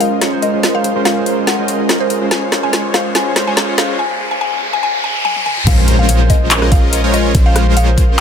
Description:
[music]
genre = future bass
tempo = 143 BPM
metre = 4/4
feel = swing 54% on 16ths, half-time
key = Bb minor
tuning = A4 = 440 Hz
[part]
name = mallet-like synth pluck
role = melody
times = 0.0-8.1 s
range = C5 to Ab5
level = -20 LUFS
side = left 2 dB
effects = chorus, phaser, sidechain pumping, tape echo
[part]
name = ethereal airy pad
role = sustained chords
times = 0.0-4.0 s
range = Ab3 to C6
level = -23 LUFS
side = right 4 dB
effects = ensemble chorus, built-in reverb, sidechain pumping
[part]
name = concert harp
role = arpeggios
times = 0.0-8.2 s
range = Ab4 to Gb5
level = -26 LUFS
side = equal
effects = sidechain pumping, low-pass filter, ping-pong delay
[part]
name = big bright polysynth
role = riff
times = 0.0-8.2 s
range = Ab3 to Eb5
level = -18 LUFS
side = equal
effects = sidechain pumping
[part]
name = trap drum kit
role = drums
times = 0.0-8.1 s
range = crash cymbal, handclaps, hi-hat, rim click, snare drum, toms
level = -18 LUFS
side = equal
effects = none
[part]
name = riser and impact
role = sound effects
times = 1.3-7.3 s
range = none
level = -23 LUFS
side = equal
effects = none
[part]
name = warm 808-style bass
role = bass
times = 5.7-8.2 s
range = Bb1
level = -14 LUFS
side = equal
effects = sidechain pumping
[part]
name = electronic kick drum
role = drums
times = 5.7-8.1 s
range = none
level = -12 LUFS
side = equal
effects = none
[sound]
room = light reverb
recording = high-pass filter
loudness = -11 LUFS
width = side -7 dB against mid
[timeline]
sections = 0.0-5.7 A section; 5.7-8.2 B section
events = build-up 0.0-5.7; drum fill 0.0-4.0, 5.2-5.7; filter sweep on analog polysynth 0.0-5.7; filter sweep on harp 0.0-5.7; filter sweep 0.0-5.7; riser 1.3-5.7; break 4.0-5.7; drop 5.7-8.2; impact 5.7-7.3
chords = 0.0 Bbm9; 2.3 Dbmaj7; 5.5 N.C.; 5.7 Bbm9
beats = 0.21 | 0.63 1.05 1.47 1.89 | 2.31 2.73 3.15 3.57 | 3.99 4.41 4.83 5.25 | 5.67 6.09 6.51 6.93 | 7.35 7.77 8.19

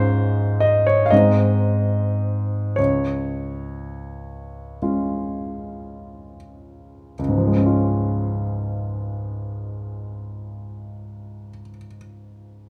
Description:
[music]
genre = classical, romantic nocturne for solo piano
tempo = 24-42 BPM (dotted quarters)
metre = 6/8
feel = rubato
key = Db major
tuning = A4 = 436 Hz
[part]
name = warm grand piano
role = solo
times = 0.0-12.7 s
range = Db2 to F5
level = -22 LUFS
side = equal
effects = none
[sound]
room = wet recital hall reverb, RT60 1.4 s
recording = close, detailed microphones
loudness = -21 LUFS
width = mono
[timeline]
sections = 0.0-7.2 A section; 7.2-11.8 B section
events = slowing down 0.0-7.2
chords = 0.0 Db/Ab; 1.1 Ab; 2.8 Db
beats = 1.11 | 2.78 4.81 | 7.17 9.50

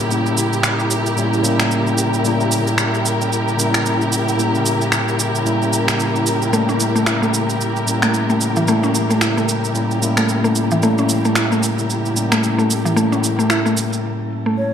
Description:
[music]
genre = organic downtempo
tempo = 112 BPM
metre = 4/4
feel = swing 58% on 16ths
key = unclear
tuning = A4 = 440 Hz
[part]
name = mellow tine electric piano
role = accompaniment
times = 0.0-14.7 s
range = A2 to E4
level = -20 LUFS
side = left 2 dB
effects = phaser, digital delay
[part]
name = warm studio string section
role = sustained chords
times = 0.0-14.0 s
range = C#3 to Bb4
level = -21 LUFS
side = right 1 dB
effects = vintage 12-bit sampler grit, shimmer reverb
[part]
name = electronic shaker and finger snaps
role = drums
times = 0.0-14.0 s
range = none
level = -22 LUFS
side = right 2 dB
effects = small room ambience, gated reverb
[part]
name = mallet-like synth pluck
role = arpeggios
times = 6.5-14.7 s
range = E3 to E4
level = -19 LUFS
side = equal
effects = chorus, digital delay, shimmer reverb
[part]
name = breathy bass bansuri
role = melody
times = 14.6-14.7 s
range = C#5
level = -24 LUFS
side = left 1 dB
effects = shimmer reverb
[sound]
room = wet plate reverb, RT60 2.1 s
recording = bright 1980s-style digital production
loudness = -15 LUFS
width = side -8 dB against mid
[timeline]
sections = 0.0-14.7 A section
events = break 14.0-14.7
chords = 0.0 A7b9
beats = | 0.10 0.64 1.18 1.71 | 2.25 2.78 3.32 3.85 | 4.39 4.93 5.46 6.00 | 6.53 7.07 7.61 8.14 | 8.68 9.21 9.75 10.28 | 10.82 11.36 11.89 12.43 | 12.96 13.50 14.03 14.57

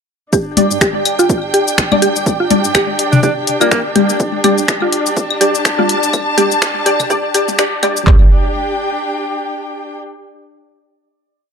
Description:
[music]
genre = minimal techno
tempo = 124 BPM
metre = 4/4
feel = swing 57% on 16ths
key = unclear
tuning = A4 = 444 Hz
[part]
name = mallet-like synth pluck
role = riff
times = 0.3-8.3 s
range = F4 to G4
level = -18 LUFS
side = right 1 dB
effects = chorus, sidechain pumping, ping-pong delay
[part]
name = punchy analog drum machine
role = drums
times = 0.3-8.2 s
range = handclaps, kick drum, toms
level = -15 LUFS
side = right 1 dB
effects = high-pass filter on kick, high-pass filter on snare, high-pass filter on toms
[part]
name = punchy analog drum machine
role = drums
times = 0.3-8.1 s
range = finger snaps, hi-hat, shaker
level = -18 LUFS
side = left 2 dB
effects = none
[part]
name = bubbling stepped-filter texture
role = texture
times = 0.3-8.1 s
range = D5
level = -25 LUFS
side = right 2 dB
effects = chorus, built-in reverb, sidechain pumping
[part]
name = rich studio string section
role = texture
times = 0.3-10.0 s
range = D4 to A5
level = -20 LUFS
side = equal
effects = sidechain pumping
[part]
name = filtered dub chord stab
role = stabs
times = 0.6-8.3 s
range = G3 to D5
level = -20 LUFS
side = left 1 dB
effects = ensemble chorus, digital delay
[part]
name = saturated sub bass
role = bass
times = 0.6-8.3 s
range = G1 to G2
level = -19 LUFS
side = right 1 dB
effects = none
[part]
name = electronic toms and claves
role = percussion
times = 0.6-7.9 s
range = none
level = -17 LUFS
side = left 5 dB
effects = digital delay
[part]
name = clear alto saxophone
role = melody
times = 3.1-3.8 s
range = Bb3 to D4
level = -20 LUFS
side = right 2 dB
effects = low-pass filter, digital delay
[sound]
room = moderate plate reverb, RT60 1.4 s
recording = dark, warm production, high-pass filter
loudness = -12 LUFS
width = side -6 dB against mid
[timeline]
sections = 0.3-8.1 build; 8.1-10.0 final chord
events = build-up 0.3-8.1; filter sweep on synth arpeggio sound 0.3-8.1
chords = 0.3 G5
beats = | 0.33 0.81 1.30 1.78 | 2.26 2.75 3.23 3.72 | 4.20 4.68 5.17 5.65 | 6.13 6.62 7.10 7.59 | 8.07 8.55 9.04 9.52

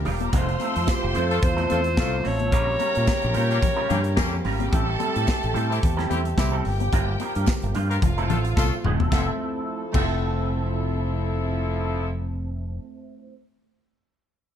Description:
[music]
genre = disco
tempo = 109 BPM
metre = 4/4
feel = swing 56% on 16ths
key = F major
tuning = A4 = 438 Hz
[part]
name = clear studio string section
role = second line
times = 0.0-12.1 s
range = A3 to C6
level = -32 LUFS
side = right 1 dB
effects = none
[part]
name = warm French horn section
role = sustained chords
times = 0.0-12.1 s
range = C3 to A4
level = -32 LUFS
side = left 1 dB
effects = none
[part]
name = fingered electric bass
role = bass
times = 0.0-12.8 s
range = Eb1 to Bb2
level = -26 LUFS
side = equal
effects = none
[part]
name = electric guitar with an envelope filter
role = accompaniment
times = 0.1-13.3 s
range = G3 to C5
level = -31 LUFS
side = right 4 dB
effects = ensemble chorus
[part]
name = modern studio drum kit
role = drums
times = 0.1-10.1 s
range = crash cymbal, hi-hat, kick drum, snare drum, toms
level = -25 LUFS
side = equal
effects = none
[part]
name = congas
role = percussion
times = 0.2-10.1 s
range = none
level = -32 LUFS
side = left 7 dB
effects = none
[part]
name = breathy alto saxophone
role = melody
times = 0.4-4.4 s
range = F4 to Db5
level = -27 LUFS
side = left 1 dB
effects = plate reverb
[part]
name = tambourine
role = percussion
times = 0.9-10.1 s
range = none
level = -41 LUFS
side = right 6 dB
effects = none
[part]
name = clear horn section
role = stabs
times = 1.3-12.1 s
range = F3 to Bb4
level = -31 LUFS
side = left 3 dB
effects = none
[sound]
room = light reverb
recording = dark, warm production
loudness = -21 LUFS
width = side -9 dB against mid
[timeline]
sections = 0.0-9.1 A section; 9.1-11.3 B section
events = drum fill 8.6-9.1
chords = 0.3 Fmaj7; 2.5 Bbm6; 4.7 Am7; 6.6 Gm7; 8.0 Fmaj7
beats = | 0.33 0.88 1.43 1.98 | 2.53 3.08 3.63 4.18 | 4.73 5.28 5.83 6.38 | 6.92 7.47 8.02 8.57 | 9.12 9.67 10.22 10.77

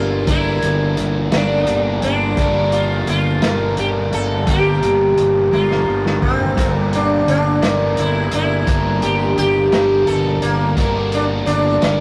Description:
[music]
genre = psychedelic rock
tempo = 57 BPM (dotted quarters)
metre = 6/8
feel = straight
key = G dorian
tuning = A4 = 440 Hz
[part]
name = sitar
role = melody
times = 0.0-12.0 s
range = Bb3 to A4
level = -20 LUFS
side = equal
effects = tape echo
[part]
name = overdriven electric guitar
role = riff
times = 0.0-12.0 s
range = G2 to Bb4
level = -24 LUFS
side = equal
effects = phaser
[part]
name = fuzz fingered electric bass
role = bass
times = 0.0-12.0 s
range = G1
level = -23 LUFS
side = equal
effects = overdrive
[part]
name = vintage drum kit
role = drums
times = 0.3-12.0 s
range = hi-hat, kick drum, snare drum, toms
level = -24 LUFS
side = equal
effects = none
[part]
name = congas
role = percussion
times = 6.6-12.0 s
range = none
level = -33 LUFS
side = equal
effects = none
[sound]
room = wet studio reverb, RT60 0.6 s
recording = rough rehearsal-room recording, warm saturation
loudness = -17 LUFS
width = mono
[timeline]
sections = 0.0-12.0 A section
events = drum fill 5.5-6.6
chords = 0.0 Gm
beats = | 0.28 1.33 | 2.39 3.44 | 4.49 5.54 | 6.58 7.63 | 8.68 9.72 | 10.77 11.82

